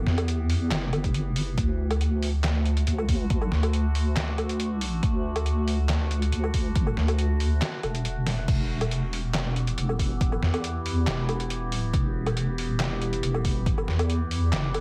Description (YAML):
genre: deep dubstep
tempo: 139 BPM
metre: 4/4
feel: half-time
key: E minor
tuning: A4 = 440 Hz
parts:
  - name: overtone-sweeping drone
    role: sustained chords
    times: 0.0-14.8 s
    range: D3 to G4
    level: -38 LUFS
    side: equal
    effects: chorus, built-in reverb, phaser
  - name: deep soft wobble bass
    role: bass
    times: 0.0-14.8 s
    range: E1 to E2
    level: -28 LUFS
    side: equal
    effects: chorus
  - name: trip hop sampler-style drum kit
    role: drums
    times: 0.1-14.8 s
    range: crash cymbal, handclaps, hi-hat, snare drum, woodblock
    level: -33 LUFS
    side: equal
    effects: overdrive
  - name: electronic kick drum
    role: drums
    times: 1.0-13.8 s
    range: none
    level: -29 LUFS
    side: equal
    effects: overdrive
room: little or no reverb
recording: none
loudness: -26 LUFS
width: mono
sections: 0.0-14.8 A section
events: drum fill 8.3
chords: 0.0 Em; 1.6 D; 8.5 Em